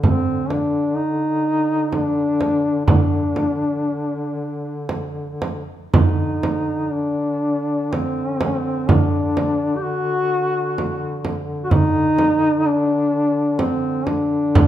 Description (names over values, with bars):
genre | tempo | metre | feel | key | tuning
caucasian folk, Caucasian lament | 55-66 BPM | 3/4 | rubato | unclear | A4 = 438 Hz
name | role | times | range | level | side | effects
mellow duduk | melody | 0.0-14.7 s | C4 to G4 | -19 LUFS | left 1 dB | none
mellow duduk | drone | 0.0-14.7 s | D3 | -28 LUFS | equal | none
frame drum | percussion | 0.0-14.7 s | none | -19 LUFS | right 2 dB | none
room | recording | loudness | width
moderate recital hall reverb, RT60 1.4 s | minimal, uncompressed stereo recording | -18 LUFS | side -12 dB against mid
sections
0.0-5.9 A section; 5.9-14.7 B section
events
none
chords
none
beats
| 0.03 0.96 1.91 | 2.87 3.85 4.89 | 5.93 6.92 7.92 | 8.89 9.84 10.78 | 11.72 12.64 13.59 | 14.55